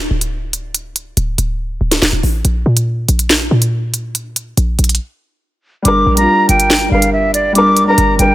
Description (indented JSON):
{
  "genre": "hip hop, drill",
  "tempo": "141 BPM",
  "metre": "4/4",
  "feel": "half-time",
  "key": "unclear",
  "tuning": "A4 = 441 Hz",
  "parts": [
    { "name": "short 808-style bass", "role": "bass", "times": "0.0-8.3 s", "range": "D1 to Bb2", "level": "-16 LUFS", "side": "equal", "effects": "none" },
    { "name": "drill drum kit", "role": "drums", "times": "0.2-8.3 s", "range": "handclaps, hi-hat, snare drum", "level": "-15 LUFS", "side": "equal", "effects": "none" },
    { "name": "breathy concert flute", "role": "melody", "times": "5.8-8.3 s", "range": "D5 to D6", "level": "-13 LUFS", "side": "equal", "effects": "low-pass filter" },
    { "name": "felt-muted upright piano", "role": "accompaniment", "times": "5.8-8.3 s", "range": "G3 to Bb4", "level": "-14 LUFS", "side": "equal", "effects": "low-pass filter" }
  ],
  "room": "small room ambience",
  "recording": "none",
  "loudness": "-12 LUFS",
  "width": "side -15 dB against mid",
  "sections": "0.0-8.3 A section",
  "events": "break 0.0-5.9",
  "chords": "0.0 N.C.; 5.9 Gm"
}